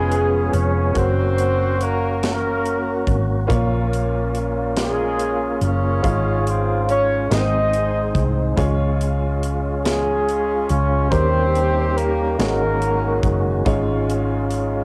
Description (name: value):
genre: slow gospel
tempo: 47 BPM (dotted quarters)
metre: 6/8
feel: straight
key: Db major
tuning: A4 = 441 Hz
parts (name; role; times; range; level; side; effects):
- mellow horn section; melody; 0.0-13.6 s; Ab3 to Eb5; -24 LUFS; equal; cassette tape, plate reverb
- warm upright piano; accompaniment; 0.0-14.8 s; Ab2 to F5; -29 LUFS; equal; cassette tape, plate reverb
- tonewheel organ; sustained chords; 0.0-14.8 s; Eb3 to Ab4; -27 LUFS; equal; fast rotary speaker, cassette tape, plate reverb
- hollow-body short-scale fingered electric bass; bass; 0.0-14.8 s; F1 to Eb2; -24 LUFS; equal; none
- crisp fusion drum kit; drums; 0.1-14.7 s; hi-hat, kick drum, snare drum; -28 LUFS; equal; none
room: light reverb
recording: home recording on cassette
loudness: -20 LUFS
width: mono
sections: 0.0-14.8 A section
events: none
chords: 0.0 Db7/F; 1.0 Gb; 3.5 Bbm; 6.0 Db/Ab; 7.3 Ab; 8.6 Db; 11.1 Eb7; 12.4 Ab9sus4; 13.7 Db/Ab